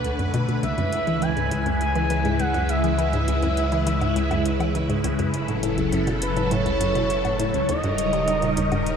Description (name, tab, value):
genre	ambient, sequencer-driven space music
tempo	102 BPM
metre	4/4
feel	straight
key	unclear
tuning	A4 = 439 Hz
part	phased string machine	sustained chords	0.0-9.0 s	C#3 to G#5	-24 LUFS	equal	ensemble chorus, phaser
part	resonant blip pluck	riff	0.0-8.8 s	C#2 to G3	-27 LUFS	equal	chorus, ping-pong delay
part	round analog bass	bass	0.0-9.0 s	D#1 to C#2	-28 LUFS	equal	none
part	electronic hi-hat and woodblock	percussion	0.0-9.0 s	none	-36 LUFS	left 3 dB	ping-pong delay
part	expressive portamento lead	melody	0.6-9.0 s	B4 to G#5	-26 LUFS	equal	lush chorus, ping-pong delay
room	wet shimmer reverb, RT60 6.8 s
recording	none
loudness	-20 LUFS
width	side -7 dB against mid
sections	0.0-9.0 A section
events	fade-in on drum 0.0-9.0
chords	0.0 Bm7; 0.6 C#m7; 5.3 F#m7; 7.7 D#7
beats	0.04 | 0.63 1.22 1.81 2.40 | 2.98 3.57 4.16 4.75 | 5.34 5.93 6.51 7.10 | 7.69 8.28 8.87